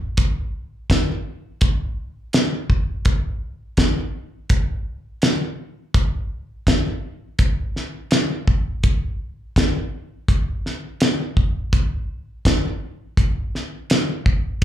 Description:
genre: blues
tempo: 83 BPM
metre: 4/4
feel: straight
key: none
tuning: none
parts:
  - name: cloth-damped thuddy drum kit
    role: drums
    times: 0.2-14.6 s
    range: hi-hat, kick drum, snare drum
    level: -18 LUFS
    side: equal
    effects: slapback echo
room: moderate club reverb, RT60 0.7 s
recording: live gig heard through the venue's PA, club reverb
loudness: -19 LUFS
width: side -12 dB against mid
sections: 0.0-14.6 A section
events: none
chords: none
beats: 0.18 0.90 | 1.62 2.34 3.06 3.79 | 4.51 5.23 5.95 6.67 | 7.39 8.12 8.84 9.56 | 10.28 11.01 11.73 12.45 | 13.17 13.90 14.62

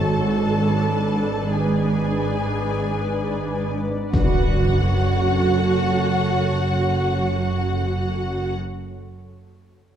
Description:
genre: cinematic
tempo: free time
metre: none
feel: none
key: F# minor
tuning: A4 = 439 Hz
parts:
  - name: rich studio violin section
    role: melody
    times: 0.0-8.6 s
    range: F#5 to A5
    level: -32 LUFS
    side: left 4 dB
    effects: none
  - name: rich symphonic violin section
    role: second line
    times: 0.0-8.5 s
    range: F#5 to A5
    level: -31 LUFS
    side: left 3 dB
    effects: none
  - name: rich symphonic viola section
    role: accompaniment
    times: 0.0-8.5 s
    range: F#4 to A4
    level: -27 LUFS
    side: right 2 dB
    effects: none
  - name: granular cloud pad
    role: sustained chords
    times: 0.0-8.6 s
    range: D4 to D5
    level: -28 LUFS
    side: equal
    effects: built-in reverb
  - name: dark symphonic double bass section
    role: bass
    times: 0.0-8.5 s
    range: F#1 to G#1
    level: -26 LUFS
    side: right 2 dB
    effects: none
  - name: warm symphonic cello section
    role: bass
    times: 0.0-8.6 s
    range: F#2 to G#2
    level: -24 LUFS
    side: right 2 dB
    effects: none
  - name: timpani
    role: percussion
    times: 4.1-8.5 s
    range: F#2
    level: -31 LUFS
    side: left 2 dB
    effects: none
  - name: impact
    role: sound effects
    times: 4.1-8.6 s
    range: none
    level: -23 LUFS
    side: left 1 dB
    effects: none
room: moderate recital hall reverb, RT60 1.7 s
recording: dark, warm production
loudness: -19 LUFS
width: side -9 dB against mid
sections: 0.0-4.1 A section; 4.1-8.4 B section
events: impact 4.1-8.4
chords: 0.0 G#dim; 4.1 F#m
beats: free time

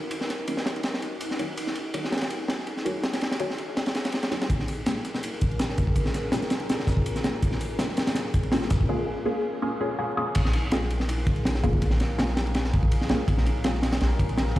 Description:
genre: drum and bass, jungle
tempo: 164 BPM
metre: 4/4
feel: swing 53% on 16ths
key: unclear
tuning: A4 = 444 Hz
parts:
  - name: warbly tape-like pad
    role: sustained chords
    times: 0.0-14.6 s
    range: Db4 to Bb4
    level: -35 LUFS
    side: left 1 dB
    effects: chorus, built-in reverb
  - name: crunchy breakbeat drum kit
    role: drums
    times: 0.1-14.6 s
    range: crash cymbal, kick drum, ride cymbal, snare drum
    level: -26 LUFS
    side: equal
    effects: high-pass filter on kick, high-pass filter on cymbals, high-pass filter on snare, high-pass filter on room
  - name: filtered dub chord stab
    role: stabs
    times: 0.5-14.6 s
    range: Bb3 to Db5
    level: -31 LUFS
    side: left 1 dB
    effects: phaser, analog chorus, vintage 12-bit sampler grit, dub echo
  - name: saturated sub bass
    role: bass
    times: 4.5-14.6 s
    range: F1 to Bb1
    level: -27 LUFS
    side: equal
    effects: high-pass filter
  - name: breakbeat sampler-style drum kit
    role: drums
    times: 4.5-8.8 s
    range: hi-hat, snare drum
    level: -43 LUFS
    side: left 2 dB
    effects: high-pass filter on hats, high-pass filter on snare
room: moderate echo chamber reverb, RT60 1.8 s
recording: played on a big sound system in a bare room, stone room reverb, vinyl crackle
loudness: -24 LUFS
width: side -15 dB against mid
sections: 0.0-4.5 A section; 4.5-10.4 B section; 10.4-14.6 C section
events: build-up 4.5-10.4; filter sweep on synth stab 4.5-10.4; break 8.9-10.4; drop 10.4-14.6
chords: 0.0 Ebm7; 4.5 Bbm7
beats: | 0.11 0.48 0.84 1.21 | 1.57 1.94 2.31 2.67 | 3.04 3.40 3.77 4.13 | 4.50 4.87 5.23 5.60 | 5.96 6.33 6.70 7.06 | 7.43 7.79 8.16 8.53 | 8.89 9.26 9.62 9.99 | 10.36 10.72 11.09 11.45 | 11.82 12.18 12.55 12.92 | 13.28 13.65 14.01 14.38

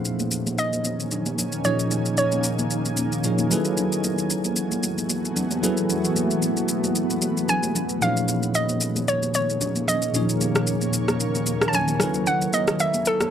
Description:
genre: amapiano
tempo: 113 BPM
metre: 4/4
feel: swing 55% on 16ths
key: Bb minor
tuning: A4 = 442 Hz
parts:
  - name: hollow square pluck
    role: melody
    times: 0.0-3.5, 7.5-13.3 s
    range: A4 to A5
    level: -25 LUFS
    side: right 1 dB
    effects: chorus, analog delay
  - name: bell-like tine electric piano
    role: accompaniment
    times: 0.0-13.3 s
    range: Bb2 to Ab5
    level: -26 LUFS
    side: equal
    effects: medium stereo tremolo
  - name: granular cloud pad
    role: sustained chords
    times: 0.0-13.3 s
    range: Eb3 to Ab5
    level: -27 LUFS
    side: equal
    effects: built-in reverb
  - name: electronic shaker and rim click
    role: drums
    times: 0.0-13.3 s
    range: none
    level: -26 LUFS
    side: left 1 dB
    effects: overdrive
  - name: congas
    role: percussion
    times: 0.2-13.3 s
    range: none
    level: -31 LUFS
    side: right 2 dB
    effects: none
room: light reverb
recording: dry, gritty hardware recording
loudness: -21 LUFS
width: side -9 dB against mid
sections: 0.0-13.3 A section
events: none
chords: 0.0 Bbm11; 3.5 Gbm11; 8.0 Bbm7; 12.0 Gbm11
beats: 0.05 0.58 1.12 | 1.65 2.18 2.71 3.24 | 3.77 4.30 4.83 5.36 | 5.89 6.43 6.96 7.49 | 8.02 8.55 9.08 9.61 | 10.14 10.67 11.20 11.73 | 12.27 12.80

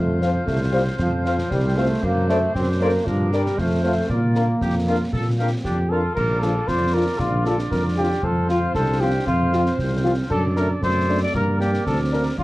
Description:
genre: military-style march for wind band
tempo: 116 BPM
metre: 2/4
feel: straight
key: Bb major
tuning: A4 = 440 Hz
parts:
  - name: warm woodwind section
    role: second line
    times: 0.0-12.4 s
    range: D4 to D5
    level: -31 LUFS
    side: equal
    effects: none
  - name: warm trombone section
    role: sustained chords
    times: 0.0-5.9 s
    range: F3 to C4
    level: -24 LUFS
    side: right 1 dB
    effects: none
  - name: mellow tuba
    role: bass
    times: 0.0-12.4 s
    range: Bb1 to Bb2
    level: -22 LUFS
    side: equal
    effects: none
  - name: mellow cornet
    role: melody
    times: 0.2-12.4 s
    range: F4 to F5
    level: -24 LUFS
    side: left 1 dB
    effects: none
  - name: clear French horn section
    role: accompaniment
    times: 0.2-12.2 s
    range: F3 to C5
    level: -24 LUFS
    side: left 2 dB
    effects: none
  - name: concert snare drum, concert bass drum and clash cymbals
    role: drums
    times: 0.2-12.4 s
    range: none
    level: -29 LUFS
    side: equal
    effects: none
  - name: mellow euphonium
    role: second line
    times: 6.7-12.4 s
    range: A3 to F4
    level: -29 LUFS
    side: right 3 dB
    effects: none
room: light reverb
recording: worn, warbling old tape, cassette tape, warbly pitch drift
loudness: -18 LUFS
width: side -18 dB against mid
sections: 0.0-6.2 A section; 6.2-12.4 A section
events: none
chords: 0.0 F5; 2.0 D7/F#; 3.1 Gm7; 3.6 F; 4.1 Bb; 8.2 F5; 10.3 D/F#; 11.3 Gm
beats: 0.47 | 0.99 1.51 | 2.02 2.54 | 3.06 3.58 | 4.09 4.61 | 5.13 5.65 | 6.17 6.68 | 7.20 7.72 | 8.24 8.76 | 9.27 9.79 | 10.31 10.83 | 11.35 11.87 | 12.38

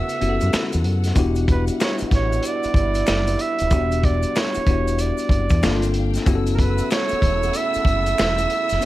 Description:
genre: R&B, neo-soul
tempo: 94 BPM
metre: 4/4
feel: swing 63% on 16ths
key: E dorian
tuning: A4 = 439 Hz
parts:
  - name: clear flugelhorn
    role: melody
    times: 0.0-8.9 s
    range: A#4 to E5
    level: -24 LUFS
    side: right 3 dB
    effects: slapback echo
  - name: bell-like tine electric piano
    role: accompaniment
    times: 0.0-8.9 s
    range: C#3 to B4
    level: -26 LUFS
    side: left 5 dB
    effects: none
  - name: warm studio string section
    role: sustained chords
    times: 0.0-8.9 s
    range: G3 to E6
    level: -34 LUFS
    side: left 5 dB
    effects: none
  - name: muted trombone section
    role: stabs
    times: 0.0-8.9 s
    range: B2 to F#4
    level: -31 LUFS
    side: right 7 dB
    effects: none
  - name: crunchy breakbeat drum kit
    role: drums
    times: 0.1-8.9 s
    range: finger snaps, hi-hat, kick drum, snare drum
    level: -22 LUFS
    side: equal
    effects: none
  - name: maracas and finger snaps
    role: percussion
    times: 0.1-8.9 s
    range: none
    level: -36 LUFS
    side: left 5 dB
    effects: none
  - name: deep dub fingered electric bass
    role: bass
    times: 0.2-8.8 s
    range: D#1 to F#2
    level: -22 LUFS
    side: equal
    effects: none
room: little or no reverb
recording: vinyl crackle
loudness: -18 LUFS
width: side -16 dB against mid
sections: 0.0-8.9 A section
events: break 0.0-1.2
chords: 0.0 F#m7; 1.2 Em9; 5.6 Gm7; 6.3 F#m7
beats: 0.52 | 1.16 1.79 2.43 3.07 | 3.71 4.35 4.99 5.62 | 6.26 6.90 7.54 8.18 | 8.82

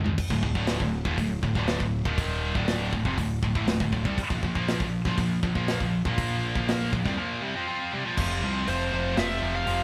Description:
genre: heavy metal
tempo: 120 BPM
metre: 4/4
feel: straight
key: D minor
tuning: A4 = 440 Hz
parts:
  - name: scooped high-gain guitar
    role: riff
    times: 0.0-9.8 s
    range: D2 to F4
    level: -30 LUFS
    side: equal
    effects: distortion
  - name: fuzz picked electric bass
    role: bass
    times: 0.0-9.8 s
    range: D1 to C#2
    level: -33 LUFS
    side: equal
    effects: overdrive
  - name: tight metal drum kit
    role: drums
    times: 0.1-9.8 s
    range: crash cymbal, hi-hat, kick drum, snare drum, toms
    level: -32 LUFS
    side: equal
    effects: none
  - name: high-gain lead guitar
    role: melody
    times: 8.7-9.8 s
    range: C5 to F5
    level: -31 LUFS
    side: equal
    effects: distortion
room: moderate stone room reverb, RT60 1.1 s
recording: band playing live in one room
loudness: -27 LUFS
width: mono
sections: 0.2-8.2 A section; 8.2-9.8 B section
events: drum fill 0.0; break 7.2-8.2; half time 8.2-9.8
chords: 0.2 D5; 2.0 Eb5; 2.5 Dm; 4.3 Bb5; 8.2 F5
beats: | 0.17 0.67 1.17 1.67 | 2.17 2.67 3.17 3.67 | 4.17 4.67 5.17 5.67 | 6.17 6.67 7.17 7.67 | 8.18 8.68 9.18 9.68

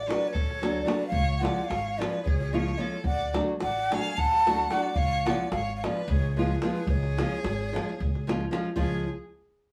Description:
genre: balkan folk, Balkan wedding band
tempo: 220 BPM (eighths)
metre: 7/8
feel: straight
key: C# phrygian dominant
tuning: A4 = 440 Hz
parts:
  - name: breathy ney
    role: melody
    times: 0.0-9.1 s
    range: B4 to A5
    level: -32 LUFS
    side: equal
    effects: none
  - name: clear violin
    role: second line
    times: 0.0-9.1 s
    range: G#4 to F#5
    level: -38 LUFS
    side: equal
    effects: none
  - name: upright bass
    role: bass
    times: 0.0-9.1 s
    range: G#1 to D2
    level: -34 LUFS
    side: equal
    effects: none
  - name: nylon-string guitar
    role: accompaniment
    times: 0.1-9.1 s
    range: E#3 to F#4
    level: -32 LUFS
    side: equal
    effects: none
  - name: davul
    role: percussion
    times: 0.1-9.1 s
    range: none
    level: -34 LUFS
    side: equal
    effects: none
room: wet studio reverb, RT60 0.6 s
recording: band playing live in one room, small room ambience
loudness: -27 LUFS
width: mono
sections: 0.0-8.8 A section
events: none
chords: 0.0 D; 1.1 C#; 3.0 D; 5.0 C#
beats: 0.04 0.31 0.58 0.86 | 1.13 1.40 1.68 1.95 2.22 2.50 2.77 | 3.04 3.31 3.59 3.86 4.13 4.41 4.68 | 4.95 5.22 5.50 5.77 6.04 6.32 6.59 | 6.86 7.13 7.41 7.68 7.95 8.22 8.49 | 8.77 9.04

